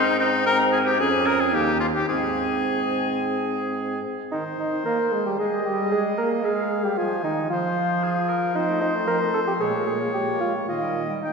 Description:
quick classical-period movement for wind quintet; 112 BPM; 4/4; straight; Ab major; A4 = 440 Hz
silver concert flute; melody; 0.0-11.3 s; Eb4 to Bb5; -31 LUFS; left 4 dB
clear oboe; second line; 0.0-11.3 s; Eb4 to Ab5; -26 LUFS; left 2 dB
bright clarinet; accompaniment; 0.0-11.3 s; Eb3 to Db4; -31 LUFS; right 4 dB
warm French horn; accompaniment; 0.0-11.3 s; Bb2 to Eb4; -29 LUFS; equal
mellow bassoon; bass; 0.0-11.3 s; Eb2 to Bb4; -25 LUFS; right 2 dB
wet church reverb, RT60 2.5 s; minimal, uncompressed stereo recording; -21 LUFS; side -4 dB against mid
0.0-4.3 A section; 4.3-11.3 A section
0.0 Ab; 1.0 Db/F; 1.5 Eb; 2.1 Ab; 4.3 Ab/Eb; 6.4 Fm; 8.6 F7; 9.6 Bbm7; 10.7 Eb
0.46 0.99 1.53 | 2.08 2.64 3.20 3.76 | 4.31 4.85 5.39 5.92 | 6.45 6.98 7.50 8.03 | 8.55 9.08 9.61 10.14 | 10.68 11.22

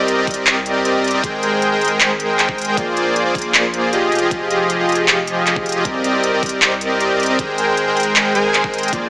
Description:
future bass; 156 BPM; 4/4; half-time; A4 = 439 Hz
soft supersaw; riff; 0.0-9.1 s; F3 to Ab5; -15 LUFS; equal; sidechain pumping, digital delay
saturated sub bass; bass; 0.0-9.1 s; F1 to C2; -33 LUFS; equal; sidechain pumping
trap drum kit; drums; 0.1-9.0 s; handclaps, hi-hat; -17 LUFS; equal; overdrive
electronic kick drum; drums; 0.3-9.0 s; -26 LUFS; equal; overdrive
moderate digital room reverb, RT60 1.1 s; small speaker sound; -14 LUFS; side -24 dB against mid
0.0-9.1 A section
drum fill 8.7
0.0 Cm7; 1.2 Abmaj7; 2.8 Bb7; 4.1 Fm7; 5.9 Cm7; 7.4 Abmaj7
0.08 0.47 0.85 | 1.24 1.62 2.00 2.39 | 2.77 3.16 3.54 3.93 | 4.31 4.70 5.08 5.47 | 5.85 6.24 6.62 7.00 | 7.39 7.77 8.16 8.54 | 8.93

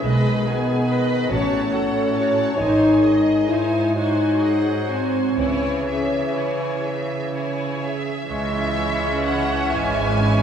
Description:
classical; 41-48 BPM (dotted quarters); 6/8; rubato; C# minor; A4 = 444 Hz
clear studio violin section; melody; 0.0-10.4 s; D#5 to B5; -30 LUFS; left 1 dB
warm clarinet; second line; 0.0-10.4 s; E4 to C#5; -29 LUFS; right 1 dB
warm symphonic violin section; second line; 0.0-10.4 s; G#3 to E5; -31 LUFS; left 2 dB
clear symphonic viola section; accompaniment; 0.0-10.4 s; E3 to B4; -30 LUFS; right 1 dB
warm bassoon; accompaniment; 0.0-10.4 s; D#3 to G#3; -28 LUFS; right 2 dB
mellow French horn section; sustained chords; 0.0-10.4 s; G#3 to E4; -21 LUFS; left 2 dB
rich studio double bass section; bass; 0.0-10.4 s; G#1 to C#2; -26 LUFS; right 2 dB
clear symphonic cello section; bass; 0.1-10.4 s; G#2 to C#3; -28 LUFS; right 3 dB
warm oboe; second line; 8.3-10.4 s; C#5; -29 LUFS; right 1 dB
wet scoring stage reverb, RT60 1.7 s; heard from further back in the room; -18 LUFS; side -8 dB against mid
0.0-8.3 A section; 8.3-10.4 B section
0.1 G#m/B; 1.3 F#m/A; 2.6 G#; 4.0 G#7; 5.4 C#m
| 0.05 1.31 | 2.59 3.95 | 5.39 6.85 | 8.30 9.73

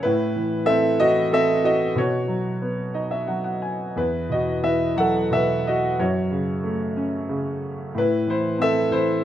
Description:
classical, lyrical solo piano; 92 BPM; 3/4; rubato; A4 = 441 Hz
warm concert grand piano; solo; 0.0-9.2 s; E2 to G#5; -20 LUFS; equal
moderate recital hall reverb, RT60 1.3 s; close, detailed microphones; -20 LUFS; side -11 dB against mid
0.0-9.2 A section
grand piano fill 2.6-4.0
0.0 Amadd9; 2.0 B; 4.0 Esus2; 6.0 F#m; 8.0 Am
| 0.04 0.68 1.32 | 1.97 2.62 3.29 | 3.97 4.64 5.32 | 5.98 6.65 7.30 | 7.95 8.59 9.23

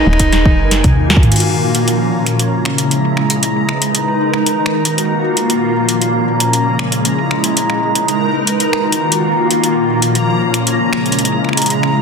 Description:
IDM; 116 BPM; 4/4; straight; Bb phrygian; A4 = 440 Hz
warm cello; melody; 0.0-0.8 s; Eb4; -19 LUFS; right 2 dB; dub echo
glassy FM pad; sustained chords; 0.0-12.0 s; Bb2 to Cb5; -15 LUFS; equal; ensemble chorus, built-in reverb
woody FM bass; bass; 0.0-1.3 s; Eb1 to Eb2; -16 LUFS; equal
bubbling stepped-filter texture; texture; 0.0-12.0 s; Ab5 to Bb5; -20 LUFS; equal; chorus, built-in reverb
booming analog drum machine; drums; 0.1-11.9 s; crash cymbal, finger snaps, hi-hat, snare drum, toms; -17 LUFS; equal; soft clipping on snare
electronic kick drum; drums; 0.2-1.3 s; -13 LUFS; equal
wet digital room reverb, RT60 1.1 s; dense, heavily limited modern master; -12 LUFS; side -5 dB against mid
0.0-1.4 A section; 1.4-12.0 B section
drum fill 0.3-1.4
0.3 Ebm; 1.4 Bbm; 2.4 Dbm; 3.4 Abm; 4.5 Ebm; 5.5 Bbm; 6.5 Dbm; 7.6 Abm; 8.6 Ebm; 9.6 Bbm; 10.7 Dbm
0.33 0.84 | 1.36 1.88 2.40 2.91 | 3.43 3.95 4.46 4.98 | 5.50 6.02 6.53 7.05 | 7.57 8.09 8.60 9.12 | 9.64 10.15 10.67 11.19 | 11.71

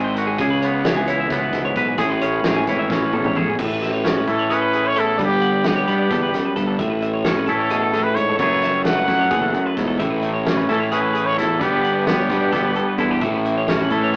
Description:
math rock and midwest emo; 262 BPM (eighths); 7/8; straight; A major; A4 = 440 Hz
twangy electric guitar; accompaniment; 0.0-14.2 s; E2 to B4; -24 LUFS; equal
twelve-string electric guitar; arpeggios; 0.0-14.1 s; G#4 to G#5; -29 LUFS; equal; spring reverb
fuzz fingered electric bass; bass; 0.0-14.2 s; F#1 to A2; -27 LUFS; equal; overdrive
loose indie drum kit; drums; 0.2-14.2 s; crash cymbal, hi-hat, kick drum, snare drum, toms; -28 LUFS; equal
growling trumpet; melody; 4.3-14.2 s; G4 to F#5; -23 LUFS; equal
overdriven semi-hollow guitar; riff; 10.0-14.2 s; G2 to E4; -29 LUFS; equal; tremolo
moderate studio reverb, RT60 0.6 s; rough rehearsal-room recording, tube saturation, AM radio sound; -19 LUFS; mono
0.0-3.6 A section; 3.6-14.2 B section
drum fill 2.9-3.6
0.4 C#m7; 2.0 Amaj7; 3.6 Amaj9; 5.2 Gmaj7; 6.8 Amaj9; 8.4 F#m9; 10.0 Amaj9; 11.6 G; 13.2 Aadd9
0.17 | 0.40 0.62 0.85 1.08 1.31 1.54 1.76 | 1.99 2.22 2.45 2.68 2.90 3.13 3.36 | 3.59 3.82 4.04 4.27 4.50 4.73 4.96 | 5.19 5.42 5.64 5.87 6.10 6.33 6.56 | 6.79 7.02 7.25 7.48 7.71 7.94 8.16 | 8.39 8.62 8.85 9.08 9.31 9.54 9.77 | 10.00 10.23 10.46 10.69 10.92 11.15 11.38 | 11.61 11.84 12.07 12.30 12.53 12.76 12.99 | 13.22 13.45 13.68 13.91 14.14

